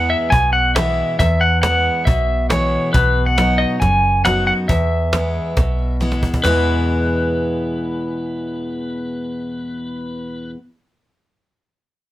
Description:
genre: honky-tonk and classic country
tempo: 137 BPM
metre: 4/4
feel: straight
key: E major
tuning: A4 = 440 Hz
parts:
  - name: pedal steel guitar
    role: melody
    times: 0.0-10.5 s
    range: B4 to G#5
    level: -19 LUFS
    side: equal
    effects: none
  - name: picked steel-string acoustic guitar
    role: accompaniment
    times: 0.0-10.6 s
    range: E2 to F#4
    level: -21 LUFS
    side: equal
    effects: none
  - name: vintage muted fingered electric bass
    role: bass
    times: 0.0-10.5 s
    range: F#1 to E2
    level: -20 LUFS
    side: equal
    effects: none
  - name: cajon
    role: drums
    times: 0.1-6.5 s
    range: none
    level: -19 LUFS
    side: equal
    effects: none
room: light reverb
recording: close, detailed microphones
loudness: -15 LUFS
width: side -14 dB against mid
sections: 0.0-6.4 A section; 6.4-9.9 B section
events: drum fill 6.0-6.4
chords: 0.0 E; 2.9 B; 4.7 E

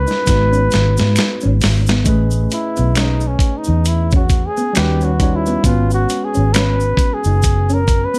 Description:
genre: R&B, neo-soul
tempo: 67 BPM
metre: 4/4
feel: swing 57% on 16ths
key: unclear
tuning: A4 = 440 Hz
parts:
  - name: breathy flugelhorn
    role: melody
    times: 0.0-8.2 s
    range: C#4 to B4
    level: -23 LUFS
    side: equal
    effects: none
  - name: tine electric piano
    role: accompaniment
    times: 0.0-8.2 s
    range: G3 to D#5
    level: -26 LUFS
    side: equal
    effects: none
  - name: vintage muted fingered electric bass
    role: bass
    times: 0.0-8.0 s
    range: F#1 to G#2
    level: -18 LUFS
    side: equal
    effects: none
  - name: mellow electric guitar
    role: second line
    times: 0.1-8.2 s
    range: A3 to D#4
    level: -27 LUFS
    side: equal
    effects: spring reverb, tape echo
  - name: dusty soul sampler-style drum kit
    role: drums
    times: 0.1-8.1 s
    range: finger snaps, hi-hat, kick drum, snare drum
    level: -19 LUFS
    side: equal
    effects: none
  - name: tube shaker and finger snaps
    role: percussion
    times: 0.1-8.2 s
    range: none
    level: -32 LUFS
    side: equal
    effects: none
room: little or no reverb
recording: none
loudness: -15 LUFS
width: mono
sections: 0.0-2.1 A section; 2.1-8.2 B section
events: drum fill 0.3-2.1; flugelhorn solo 2.1-8.2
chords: 0.3 G#m7; 2.1 Amaj9#11; 4.7 D#7alt; 5.6 G#m7

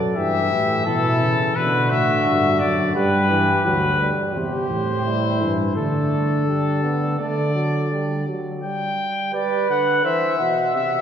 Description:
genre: classical, imitative canzona for brass ensemble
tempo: 85 BPM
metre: 4/4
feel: straight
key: G major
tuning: A4 = 440 Hz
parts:
  - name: mellow flugelhorn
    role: second line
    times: 0.0-11.0 s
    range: D4 to F#5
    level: -24 LUFS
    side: right 2 dB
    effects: none
  - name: clear trombone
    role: accompaniment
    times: 0.0-11.0 s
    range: B2 to B3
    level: -26 LUFS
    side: right 1 dB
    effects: none
  - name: warm tuba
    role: bass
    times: 0.0-8.2 s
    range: D2 to D3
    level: -23 LUFS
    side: right 1 dB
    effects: none
  - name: clear trumpet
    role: melody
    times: 0.2-11.0 s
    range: A4 to G5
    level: -22 LUFS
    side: left 4 dB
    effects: none
room: wet concert hall reverb, RT60 2.5 s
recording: heard from further back in the room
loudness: -18 LUFS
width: side -8 dB against mid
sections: 0.0-8.6 A section; 8.6-11.0 B section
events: none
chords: 0.2 Em/G; 1.6 Bm; 3.0 G; 4.4 C/E; 5.8 Dsus4; 7.2 D; 8.6 G; 10.0 C

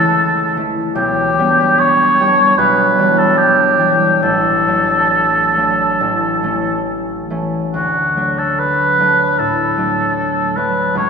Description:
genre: classical, romantic duo for oboe and harp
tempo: 67-78 BPM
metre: 4/4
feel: rubato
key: D major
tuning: A4 = 440 Hz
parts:
  - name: mellow oboe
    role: melody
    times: 0.0-11.1 s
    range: F#4 to C#5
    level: -14 LUFS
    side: equal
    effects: none
  - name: concert harp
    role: accompaniment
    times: 0.0-11.1 s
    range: A1 to E4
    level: -17 LUFS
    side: equal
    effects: none
room: wet church reverb, RT60 2.9 s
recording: minimal, uncompressed stereo recording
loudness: -12 LUFS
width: side -6 dB against mid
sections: 0.0-11.1 A section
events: none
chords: 0.0 A/C#; 1.0 G/B; 2.6 Em7/B; 4.2 D/A; 6.0 A; 7.7 D

